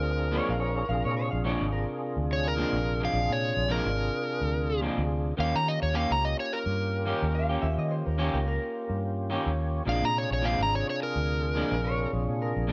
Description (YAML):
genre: blues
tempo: 107 BPM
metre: 4/4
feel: swing 56% on 16ths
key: Bb mixolydian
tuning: A4 = 440 Hz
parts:
  - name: overdriven slide guitar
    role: melody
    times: 0.0-12.1 s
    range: Bb4 to Bb5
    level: -32 LUFS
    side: equal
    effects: none
  - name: mellow tonewheel organ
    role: accompaniment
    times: 0.0-12.7 s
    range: C3 to Db5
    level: -36 LUFS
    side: equal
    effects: slow rotary speaker, overdrive, chorus vibrato
  - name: vintage muted fingered electric bass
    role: bass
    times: 0.0-12.7 s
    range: Ab1 to Eb3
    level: -32 LUFS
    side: equal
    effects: none
  - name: electric guitar through a small old amp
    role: second line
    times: 0.3-2.2, 7.3-12.7 s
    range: Bb4 to F5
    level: -37 LUFS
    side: equal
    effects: subtle chorus
  - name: electric guitar through a small old amp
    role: stabs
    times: 0.3-12.7 s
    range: Bb2 to G4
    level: -37 LUFS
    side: equal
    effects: spring reverb
room: little or no reverb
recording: nothing above 7.9 kHz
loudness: -28 LUFS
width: mono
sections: 0.0-12.7 A section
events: tonewheel organ fill 9.0-9.9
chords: 0.0 Bb7; 5.4 Eb7; 9.9 Bb7